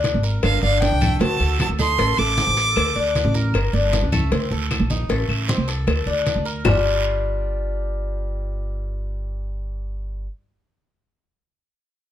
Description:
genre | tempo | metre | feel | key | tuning
latin, Cuban son and guajira | 154 BPM | 4/4 | straight | G minor | A4 = 440 Hz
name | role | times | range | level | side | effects
Cuban tres | arpeggios | 0.0-10.3 s | G3 to Bb4 | -26 LUFS | left 4 dB | none
upright bass | bass | 0.0-10.3 s | G1 to D2 | -22 LUFS | right 1 dB | none
congas | percussion | 0.0-6.7 s | none | -25 LUFS | equal | none
cowbell and bongos | percussion | 0.0-6.7 s | none | -27 LUFS | left 6 dB | none
guiro | percussion | 0.0-6.7 s | none | -32 LUFS | right 5 dB | none
clear violin | melody | 0.4-3.4 s | F5 to D6 | -21 LUFS | right 2 dB | none
nylon-string guitar | second line | 0.4-3.4 s | D4 to A4 | -28 LUFS | right 4 dB | none
claves | percussion | 0.4-6.7 s | none | -31 LUFS | left 3 dB | none
room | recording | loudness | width
little or no reverb | close, detailed microphones | -18 LUFS | side -11 dB against mid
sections
0.0-6.7 A section; 6.7-9.8 B section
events
none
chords
0.4 Gm; 1.2 D7; 2.0 Amadd11; 2.8 D5; 3.5 Gm; 4.3 D5; 5.1 Am; 5.9 D5; 6.7 G5

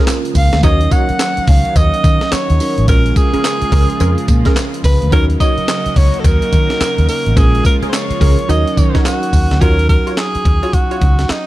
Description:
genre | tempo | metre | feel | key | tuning
R&B, new jack swing | 107 BPM | 4/4 | swing 62% on 16ths | Eb minor | A4 = 440 Hz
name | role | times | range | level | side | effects
breathy alto saxophone | melody | 0.0-11.5 s | Eb4 to Gb5 | -19 LUFS | equal | none
bell-like tine electric piano | accompaniment | 0.0-11.5 s | Gb3 to Bb4 | -22 LUFS | right 4 dB | phaser
lush unison pad | sustained chords | 0.0-9.6 s | Db3 to Gb4 | -25 LUFS | right 1 dB | chorus
funky polysynth comp | stabs | 0.0-11.0 s | Db4 to Db5 | -24 LUFS | right 1 dB | chorus
breakbeat sampler-style drum kit | drums | 0.1-11.5 s | handclaps, hi-hat, kick drum, snare drum, tambourine | -14 LUFS | equal | none
cowbell | percussion | 0.1-9.2 s | none | -30 LUFS | left 8 dB | none
vintage muted fingered electric bass | bass | 0.4-11.3 s | A1 to Eb3 | -14 LUFS | equal | none
room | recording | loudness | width
little or no reverb | none | -11 LUFS | side -16 dB against mid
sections
0.0-9.6 A section; 9.6-11.5 B section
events
none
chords
0.0 Bbm7; 0.6 Ebm7; 2.9 Bbm7; 5.1 Ebm7; 7.4 Bbm7; 8.5 Ebm7; 9.6 Ebm9

